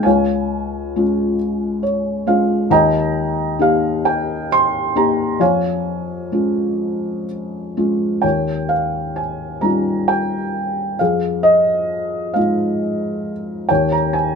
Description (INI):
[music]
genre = classical, lyrical solo piano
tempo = 41-46 BPM (dotted quarters)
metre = 6/8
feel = rubato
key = unclear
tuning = A4 = 445 Hz
[part]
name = felt-muted upright piano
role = solo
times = 0.0-14.4 s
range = Db2 to C6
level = -16 LUFS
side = equal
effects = none
[sound]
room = moderate small room reverb, RT60 0.6 s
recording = minimal, uncompressed stereo recording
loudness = -16 LUFS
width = side -5 dB against mid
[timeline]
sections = 0.0-8.2 A section; 8.2-14.4 B section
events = felt piano fill 1.4-2.7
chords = 0.1 Db; 2.7 Eb; 5.4 Db/F; 8.2 Eb9; 11.0 Fm7; 13.7 Eb7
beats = | 0.06 1.39 | 2.71 4.05 | 5.40 6.80 | 8.24 9.63 | 11.00 12.35 | 13.70